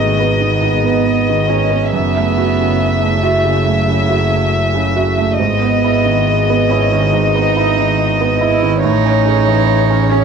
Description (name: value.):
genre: neoclassical piano and strings.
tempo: 69 BPM.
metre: 4/4.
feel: rubato.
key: E major.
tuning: A4 = 440 Hz.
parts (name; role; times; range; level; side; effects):
warm chamber violin section; melody; 0.0-10.2 s; C#5 to E5; -18 LUFS; left 5 dB; none.
rich cello; second line; 0.0-10.2 s; F#3 to E4; -20 LUFS; right 12 dB; none.
felt-muted upright piano; accompaniment; 0.0-10.2 s; F#2 to E5; -17 LUFS; right 8 dB; none.
warbly tape-like pad; sustained chords; 0.0-10.2 s; E3 to D#5; -25 LUFS; left 2 dB; chorus, built-in reverb.
warm double bass; bass; 0.0-10.2 s; F#1 to A1; -17 LUFS; left 3 dB; tube saturation.
room: studio ambience.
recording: 1960s-style stereo.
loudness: -12 LUFS.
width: side -6 dB against mid.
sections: 0.0-10.2 A section.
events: none.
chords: 0.0 G#m; 1.9 F#m7; 5.4 Emaj7/G#; 8.8 Amaj7.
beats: 0.18 1.05 | 1.92 2.79 3.65 4.53 | 5.40 6.27 7.12 7.99 | 8.84 9.70.